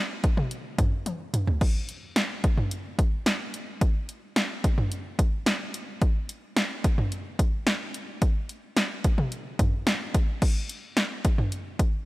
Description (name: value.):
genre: pop.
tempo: 109 BPM.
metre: 4/4.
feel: straight.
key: none.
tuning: none.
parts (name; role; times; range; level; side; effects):
punchy analog drum machine; drums; 0.2-11.9 s; crash cymbal, hi-hat, kick drum, snare drum, toms; -24 LUFS; equal; overdrive.
room: light reverb.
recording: none.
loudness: -24 LUFS.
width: side -20 dB against mid.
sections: 0.0-10.4 A section; 10.4-12.1 B section.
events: drum fill 1.1-1.6.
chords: none.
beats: 0.51 1.06 | 1.61 2.16 2.71 3.26 | 3.81 4.36 4.92 5.46 | 6.02 6.57 7.12 7.67 | 8.22 8.77 9.32 9.87 | 10.42 10.97 11.52.